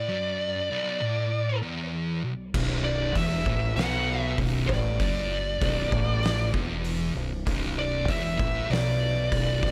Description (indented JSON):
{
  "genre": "stoner and doom metal",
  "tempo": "97 BPM",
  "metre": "4/4",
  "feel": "straight",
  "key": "B minor",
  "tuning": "A4 = 442 Hz",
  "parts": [
    { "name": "fuzz lead guitar", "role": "melody", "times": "0.0-9.7 s", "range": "D5 to F#5", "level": "-32 LUFS", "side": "equal", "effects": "distortion, tape echo" },
    { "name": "thick fuzz guitar", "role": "riff", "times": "0.0-9.7 s", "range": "B1 to B2", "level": "-34 LUFS", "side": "equal", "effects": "distortion" },
    { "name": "thick fuzz guitar", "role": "riff", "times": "0.0-9.7 s", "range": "B1 to B2", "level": "-35 LUFS", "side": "equal", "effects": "none" },
    { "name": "growling fingered electric bass", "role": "bass", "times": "2.5-9.7 s", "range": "B0 to B1", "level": "-33 LUFS", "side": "equal", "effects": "overdrive" },
    { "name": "oversized low-tuned drum kit", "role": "drums", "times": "2.5-9.7 s", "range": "crash cymbal, hi-hat, kick drum, snare drum", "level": "-33 LUFS", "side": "equal", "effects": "none" }
  ],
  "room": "little or no reverb",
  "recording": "none",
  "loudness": "-27 LUFS",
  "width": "mono",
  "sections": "0.0-9.7 A section",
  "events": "none",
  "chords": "0.0 Bm",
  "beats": "| 0.09 0.70 1.31 1.93 | 2.54 3.15 3.77 4.38 | 5.00 5.62 6.23 6.85 | 7.47 8.08 8.70 9.32"
}